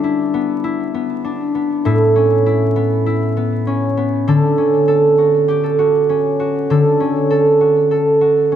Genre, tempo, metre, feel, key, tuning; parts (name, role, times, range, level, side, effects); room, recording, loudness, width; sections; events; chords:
folktronica; 99 BPM; 4/4; straight; D major; A4 = 440 Hz
concert harp; solo; 0.0-8.6 s; A2 to A4; -13 LUFS; equal
moderate plate reverb, RT60 3.5 s; vinyl crackle; -13 LUFS; side -10 dB against mid
0.0-8.6 A section
0.0 G6; 1.9 Aadd9; 4.3 Dmaj7